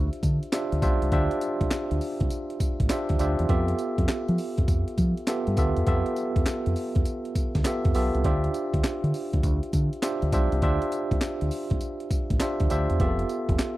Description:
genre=R&B, new jack swing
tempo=101 BPM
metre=4/4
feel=swing 66% on 16ths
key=D dorian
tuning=A4 = 442 Hz
part: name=tine electric piano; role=accompaniment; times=0.0-13.8 s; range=B3 to E5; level=-28 LUFS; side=right 1 dB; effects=medium stereo tremolo
part: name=deep dub fingered electric bass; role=bass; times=0.0-13.6 s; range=F1 to F3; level=-26 LUFS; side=equal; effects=none
part: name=breakbeat sampler-style drum kit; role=drums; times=0.1-13.8 s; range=handclaps, hi-hat, kick drum, snare drum, tambourine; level=-27 LUFS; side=equal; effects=none
room=little or no reverb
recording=dry, close 1970s-style studio recording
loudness=-23 LUFS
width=side -17 dB against mid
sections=0.0-13.8 A section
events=none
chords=0.0 Dm11; 3.5 Fmaj9#11; 8.2 Dm11; 13.0 Fmaj9#11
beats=0.52 | 1.12 1.71 2.31 2.90 | 3.49 4.09 4.68 5.28 | 5.87 6.46 7.06 7.65 | 8.25 8.84 9.44 10.03 | 10.62 11.22 11.81 12.40 | 13.00 13.59

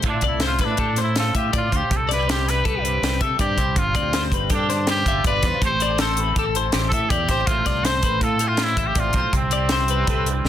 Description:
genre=math rock and midwest emo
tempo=161 BPM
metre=5/4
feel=straight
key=C major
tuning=A4 = 442 Hz
part: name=twelve-string electric guitar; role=accompaniment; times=0.0-10.5 s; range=G2 to B4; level=-29 LUFS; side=right 9 dB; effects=ensemble chorus
part: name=twelve-string electric guitar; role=arpeggios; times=0.0-10.3 s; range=C4 to E5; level=-26 LUFS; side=left 10 dB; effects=none
part: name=modern bright fingered electric bass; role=bass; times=0.0-10.5 s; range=G1 to C3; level=-25 LUFS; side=right 1 dB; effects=none
part: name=crisp fusion drum kit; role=drums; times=0.0-10.5 s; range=hi-hat, kick drum, snare drum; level=-24 LUFS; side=equal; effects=none
part: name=bright trumpet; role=melody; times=0.1-10.5 s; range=C4 to C5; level=-24 LUFS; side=equal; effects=none
room=light reverb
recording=dense, heavily limited modern master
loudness=-18 LUFS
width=side -11 dB against mid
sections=0.0-10.5 A section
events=none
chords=0.1 Fmaj7; 1.9 Cmaj7; 3.8 G7sus4; 5.6 Am7; 7.5 Fmaj7/A; 9.3 Cmaj7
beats=| 0.05 0.42 0.80 1.17 1.54 | 1.91 2.28 2.65 3.02 3.40 | 3.77 4.14 4.51 4.88 5.25 | 5.62 6.00 6.37 6.74 7.11 | 7.48 7.86 8.23 8.60 8.97 | 9.35 9.72 10.09 10.46

